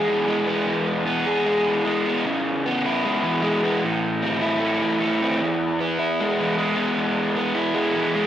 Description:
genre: rock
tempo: 153 BPM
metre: 4/4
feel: straight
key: E major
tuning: A4 = 441 Hz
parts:
  - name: raw garage guitar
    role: solo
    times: 0.0-8.3 s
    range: E2 to G#4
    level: -20 LUFS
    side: equal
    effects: overdrive, cassette tape, analog delay
room: light reverb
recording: home recording on cassette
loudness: -20 LUFS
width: side -10 dB against mid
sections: 0.0-8.3 A section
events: none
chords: 0.0 E; 2.2 C#m7; 3.8 Am; 5.4 E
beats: 0.28 | 0.67 1.07 1.46 1.85 | 2.25 2.64 3.03 3.42 | 3.82 4.21 4.60 5.00 | 5.39 5.78 6.18 6.57 | 6.96 7.36 7.75 8.14

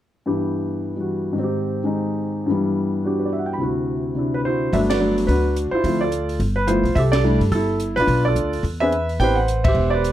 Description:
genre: jazz piano trio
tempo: 215 BPM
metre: 4/4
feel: swing 60% on 8ths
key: G major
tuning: A4 = 437 Hz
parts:
  - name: warm concert grand piano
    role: melody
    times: 0.3-10.1 s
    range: D2 to B5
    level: -20 LUFS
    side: equal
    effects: none
  - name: upright bass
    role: bass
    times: 4.7-10.1 s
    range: E1 to G2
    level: -22 LUFS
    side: equal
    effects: none
  - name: compact cocktail drum kit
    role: drums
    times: 4.7-10.1 s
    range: hi-hat, kick drum, ride cymbal, snare drum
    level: -26 LUFS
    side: left 1 dB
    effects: none
room: little or no reverb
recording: none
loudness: -18 LUFS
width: side -12 dB against mid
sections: 0.2-4.7 A section; 4.7-10.1 B section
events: band accent 4.9, 7.1, 9.6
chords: 0.2 G6; 1.4 Abmaj7; 2.5 G6; 3.6 D9; 4.7 Gmaj7; 5.8 Dm9; 6.4 G13; 7.0 C6; 8.1 Bm7b5; 8.6 E5; 9.2 Am9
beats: | 0.25 0.53 0.81 1.09 | 1.37 1.65 1.93 2.21 | 2.49 2.77 3.05 3.33 | 3.61 3.89 4.17 4.45 | 4.72 5.00 5.28 5.56 | 5.84 6.12 6.40 6.68 | 6.96 7.24 7.52 7.80 | 8.08 8.36 8.64 8.92 | 9.20 9.47 9.75 10.03

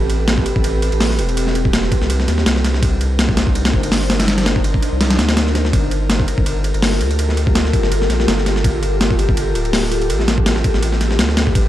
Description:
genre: drum and bass, jungle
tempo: 165 BPM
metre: 4/4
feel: swing 54% on 16ths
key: G minor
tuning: A4 = 439 Hz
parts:
  - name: ethereal airy pad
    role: sustained chords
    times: 0.0-11.7 s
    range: C4 to C5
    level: -22 LUFS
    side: left 1 dB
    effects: ensemble chorus, built-in reverb
  - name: saturated sub bass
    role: bass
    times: 0.0-11.7 s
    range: D1 to Eb2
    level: -18 LUFS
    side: equal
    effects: none
  - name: breakbeat sampler-style drum kit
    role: drums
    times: 0.1-11.6 s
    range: hi-hat, kick drum, ride cymbal, snare drum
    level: -17 LUFS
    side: equal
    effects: overdrive
room: light reverb, digital ambience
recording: dry, gritty hardware recording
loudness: -14 LUFS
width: side -13 dB against mid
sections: 0.0-11.7 A section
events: none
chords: 0.0 Am9; 2.1 Cm9; 5.7 Gm9; 10.1 Am9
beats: 0.28 0.64 1.01 | 1.37 1.73 2.10 2.46 | 2.83 3.19 3.55 3.92 | 4.28 4.64 5.01 5.37 | 5.73 6.10 6.46 6.83 | 7.19 7.55 7.92 8.28 | 8.64 9.01 9.37 9.73 | 10.10 10.46 10.82 11.19 | 11.55

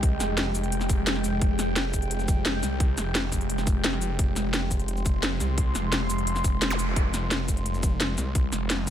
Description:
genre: dark technical drum and bass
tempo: 173 BPM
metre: 4/4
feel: straight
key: F minor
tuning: A4 = 440 Hz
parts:
  - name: deep dark ambient pad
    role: sustained chords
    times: 0.0-8.9 s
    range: Ab3 to C6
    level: -30 LUFS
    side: equal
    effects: chorus, built-in reverb, sidechain pumping
  - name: snarling distorted saw bass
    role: bass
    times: 0.0-8.9 s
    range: F1 to C2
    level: -29 LUFS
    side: equal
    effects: distortion, overdrive
  - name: drum and bass drum kit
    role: drums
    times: 0.0-8.9 s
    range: cabasa, hi-hat, snare drum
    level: -28 LUFS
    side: left 1 dB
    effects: none
  - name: electronic kick drum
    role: drums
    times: 0.0-8.9 s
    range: none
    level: -25 LUFS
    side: equal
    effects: none
  - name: zap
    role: sound effects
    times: 6.7-6.8 s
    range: none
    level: -33 LUFS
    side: equal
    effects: none
room: digital ambience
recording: none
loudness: -23 LUFS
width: side -10 dB against mid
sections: 0.0-8.9 A section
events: none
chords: 0.0 Fmadd9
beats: | 0.03 0.38 0.72 1.07 | 1.42 1.76 2.11 2.46 | 2.80 3.15 3.50 3.84 | 4.19 4.54 4.88 5.23 | 5.58 5.92 6.27 6.62 | 6.96 7.31 7.66 8.01 | 8.35 8.70

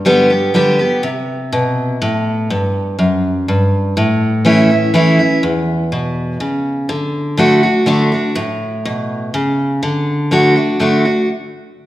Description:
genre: bluegrass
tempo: 123 BPM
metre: 3/4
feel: straight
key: D major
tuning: A4 = 438 Hz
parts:
  - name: picked steel-string acoustic guitar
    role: solo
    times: 0.0-11.3 s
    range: E2 to G4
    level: -13 LUFS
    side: equal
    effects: none
room: wet recital hall reverb, RT60 1.7 s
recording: recorded in a church or concert hall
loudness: -13 LUFS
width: side -15 dB against mid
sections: 0.0-11.3 A section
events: none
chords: 0.0 G; 1.0 Amadd9; 2.5 N.C.; 4.0 A; 6.9 D; 8.4 A; 9.8 D; 11.3 N.C.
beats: 0.06 0.55 | 1.04 1.53 2.02 | 2.50 2.99 3.48 | 3.97 4.46 4.95 | 5.43 5.92 6.41 | 6.90 7.39 7.87 | 8.36 8.85 9.34 | 9.82 10.31 10.80 | 11.29

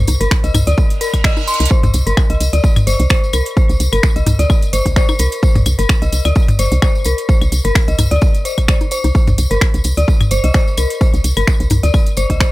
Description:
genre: minimal techno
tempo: 129 BPM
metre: 4/4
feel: swing 54% on 16ths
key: C minor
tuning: A4 = 439 Hz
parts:
  - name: woody FM bass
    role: bass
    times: 0.0-12.4 s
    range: G1 to D2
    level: -15 LUFS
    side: equal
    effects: sidechain pumping
  - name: booming analog drum machine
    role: drums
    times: 0.1-12.5 s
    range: finger snaps, hi-hat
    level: -21 LUFS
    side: equal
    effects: none
  - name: electronic bongos, toms and claves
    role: percussion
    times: 0.1-12.0 s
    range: none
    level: -18 LUFS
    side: left 1 dB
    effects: none
  - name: tambourine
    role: percussion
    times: 0.1-12.5 s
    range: none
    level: -27 LUFS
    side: left 1 dB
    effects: none
  - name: dark detuned synth bell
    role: riff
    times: 0.2-12.5 s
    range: Bb4 to C6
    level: -20 LUFS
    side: left 2 dB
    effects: chorus, sidechain pumping, tape echo
  - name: electronic kick drum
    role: drums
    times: 0.3-12.5 s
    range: none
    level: -13 LUFS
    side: equal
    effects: overdrive
  - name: reverse cymbal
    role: sound effects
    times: 1.0-1.7 s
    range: none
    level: -24 LUFS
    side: right 6 dB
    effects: none
room: little or no reverb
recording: none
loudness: -12 LUFS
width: side -18 dB against mid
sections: 0.0-12.5 A section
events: reverse cymbal 1.0-1.7; drum fill 1.5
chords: none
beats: 0.31 0.78 1.24 | 1.71 2.17 2.64 3.10 | 3.57 4.03 4.50 4.96 | 5.43 5.89 6.36 6.82 | 7.29 7.75 8.22 8.68 | 9.15 9.61 10.08 10.54 | 11.01 11.47 11.94 12.40

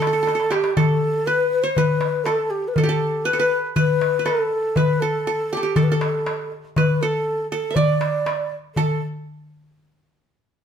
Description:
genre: Arabic maqam ensemble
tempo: 120 BPM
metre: 4/4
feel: straight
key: unclear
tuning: A4 = 440 Hz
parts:
  - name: breathy mellow ney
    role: melody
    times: 0.0-9.0 s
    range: G4 to D5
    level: -22 LUFS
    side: left 1 dB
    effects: none
  - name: qanun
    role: second line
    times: 0.0-9.0 s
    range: G4 to E5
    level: -25 LUFS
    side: right 2 dB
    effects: none
  - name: darbuka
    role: percussion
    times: 0.0-9.0 s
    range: none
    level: -22 LUFS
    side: left 1 dB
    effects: none
room: wet studio reverb, RT60 0.8 s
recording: band playing live in one room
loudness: -18 LUFS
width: side -8 dB against mid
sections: 0.0-8.8 A section; 8.8-10.6 B section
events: drum fill 0.3-0.8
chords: none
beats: 0.27 | 0.77 1.27 1.77 2.27 | 2.77 3.27 3.77 4.27 | 4.77 5.27 5.76 6.26 | 6.76 7.26 7.76 8.26 | 8.76

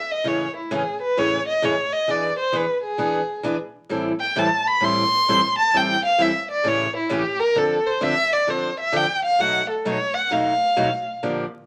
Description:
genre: jazz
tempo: 131 BPM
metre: 4/4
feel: swing 63% on 8ths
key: unclear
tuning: A4 = 442 Hz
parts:
  - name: warm violin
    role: melody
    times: 0.0-11.1 s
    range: E4 to C6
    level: -22 LUFS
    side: equal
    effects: none
  - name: picked steel-string acoustic guitar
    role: accompaniment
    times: 0.2-11.4 s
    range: A2 to A4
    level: -27 LUFS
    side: equal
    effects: none
room: moderate club reverb, RT60 0.7 s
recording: vinyl crackle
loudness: -21 LUFS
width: mono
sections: 0.0-7.6 A section; 7.6-11.7 A section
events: violin solo 0.0-11.7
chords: 0.2 Amaj7; 2.1 E7; 3.9 Am7; 6.6 A7; 7.6 Dm7; 9.4 B7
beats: | 0.24 0.70 1.16 1.62 | 2.08 2.53 2.99 3.45 | 3.90 4.36 4.82 5.28 | 5.73 6.19 6.65 7.11 | 7.56 8.02 8.48 8.94 | 9.39 9.85 10.31 10.77 | 11.22

